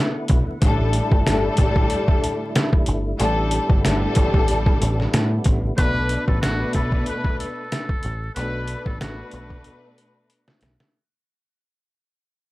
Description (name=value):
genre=hip hop, boom-bap hip-hop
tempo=93 BPM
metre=4/4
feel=swing 55% on 16ths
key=B minor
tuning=A4 = 440 Hz
part: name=warm studio string section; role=accompaniment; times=0.0-10.6 s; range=A2 to B4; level=-25 LUFS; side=left 2 dB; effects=high-pass filter, low-pass filter
part: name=percussive tonewheel organ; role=sustained chords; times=0.0-5.8 s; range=D3 to E4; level=-30 LUFS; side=right 1 dB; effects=overdrive, chorus vibrato, slow rotary speaker, high-pass filter, low-pass filter
part: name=deep dub picked electric bass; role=bass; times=0.3-10.8 s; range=G1 to A2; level=-24 LUFS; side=equal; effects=none
part: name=trip hop sampler-style drum kit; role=drums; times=0.3-10.9 s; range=hi-hat, kick drum, snare drum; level=-20 LUFS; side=equal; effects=none
part: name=trumpet with metal mute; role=melody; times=5.8-9.8 s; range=F#4 to B4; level=-30 LUFS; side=equal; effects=high-pass filter, low-pass filter, tape echo
room=light reverb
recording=vinyl crackle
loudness=-18 LUFS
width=side -18 dB against mid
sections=0.0-5.8 A section; 5.8-10.9 B section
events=fade-out 5.8-10.9; drum fill 9.7-10.9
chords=0.0 Bm7; 0.6 A7sus4; 5.8 Bm7